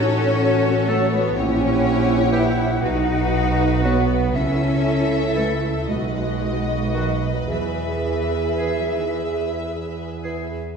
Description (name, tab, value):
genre	classical, slow romantic movement for symphony orchestra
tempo	35-42 BPM (dotted quarters)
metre	6/8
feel	rubato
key	E major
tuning	A4 = 441 Hz
part	clear symphonic violin section	melody	0.0-10.5 s	B4 to E5	-30 LUFS	left 5 dB	none
part	clear symphonic violin section	second line	0.0-10.5 s	F#4 to B4	-32 LUFS	left 1 dB	none
part	hollow concert flute	second line	0.0-9.9 s	C#5 to F#5	-29 LUFS	left 1 dB	none
part	warm symphonic viola section	accompaniment	0.0-10.5 s	E4 to G#4	-29 LUFS	right 3 dB	none
part	mellow French horn section	sustained chords	0.0-10.4 s	D#4 to A4	-28 LUFS	left 1 dB	none
part	clear symphonic cello section	bass	0.0-9.1 s	D#3 to E4	-24 LUFS	equal	none
part	clear symphonic double bass section	bass	0.0-10.5 s	A1 to E2	-23 LUFS	right 2 dB	none
part	bright oboe	second line	0.9-10.4 s	F#4 to A4	-34 LUFS	left 1 dB	none
part	mellow bassoon	accompaniment	0.9-10.4 s	D#3 to F#3	-31 LUFS	right 2 dB	none
room	wet scoring stage reverb, RT60 2.0 s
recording	heard from further back in the room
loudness	-18 LUFS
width	side -6 dB against mid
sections	0.0-10.8 A section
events	none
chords	0.0 F#m/A; 1.4 A#dim7; 2.8 B; 4.4 A/C#; 5.9 B; 7.5 E